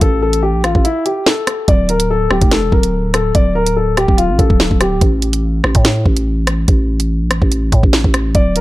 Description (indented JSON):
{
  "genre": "hip hop, drill",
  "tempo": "144 BPM",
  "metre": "4/4",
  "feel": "half-time",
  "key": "D minor",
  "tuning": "A4 = 438 Hz",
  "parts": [
    { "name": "dark grand piano", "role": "melody", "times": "0.0-5.0, 8.3-8.6 s", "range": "E4 to D5", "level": "-17 LUFS", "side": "left 2 dB", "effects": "tape echo" },
    { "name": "growling 808-style bass", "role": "bass", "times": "0.0-8.6 s", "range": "D1 to A2", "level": "-16 LUFS", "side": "equal", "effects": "none" },
    { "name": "drill drum kit", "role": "drums", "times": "0.0-8.6 s", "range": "hi-hat, kick drum, rim click, snare drum", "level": "-13 LUFS", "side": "equal", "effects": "none" }
  ],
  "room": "little or no reverb",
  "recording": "dark, warm production",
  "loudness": "-12 LUFS",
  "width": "side -17 dB against mid",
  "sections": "0.0-8.6 A section",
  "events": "break 0.8-1.7",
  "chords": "0.0 Gsus2/A; 1.7 D5; 5.0 N.C.",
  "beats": "| 0.01 0.43 0.85 1.26 | 1.68 2.10 2.51 2.93 | 3.35 3.76 4.18 4.60 | 5.01 5.43 5.85 6.26 | 6.68 7.10 7.51 7.93 | 8.35"
}